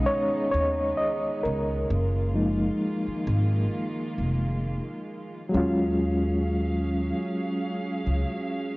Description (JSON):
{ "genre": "hip hop", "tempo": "66 BPM", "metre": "4/4", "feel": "swing 56% on 16ths", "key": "Eb minor", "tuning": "A4 = 440 Hz", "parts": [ { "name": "reed electric piano", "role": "accompaniment", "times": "0.0-8.8 s", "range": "F3 to F5", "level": "-26 LUFS", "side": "equal", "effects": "fast tremolo, cassette tape, low-pass filter" }, { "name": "warm chamber string section", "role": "sustained chords", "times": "0.0-8.8 s", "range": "Db3 to F5", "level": "-34 LUFS", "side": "right 2 dB", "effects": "low-pass filter" }, { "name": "upright bass", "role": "bass", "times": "0.5-8.2 s", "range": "F1 to D#2", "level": "-27 LUFS", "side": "equal", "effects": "none" } ], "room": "light reverb, small room ambience", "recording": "worn, warbling old tape, cassette tape, warbly pitch drift, nothing above 7.8 kHz", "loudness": "-24 LUFS", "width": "side -22 dB against mid", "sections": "0.0-5.5 A section; 5.5-8.8 B section", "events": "reed electric piano solo 0.0-5.5", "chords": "0.0 B69; 1.9 Gbmaj13; 5.5 Ebm11" }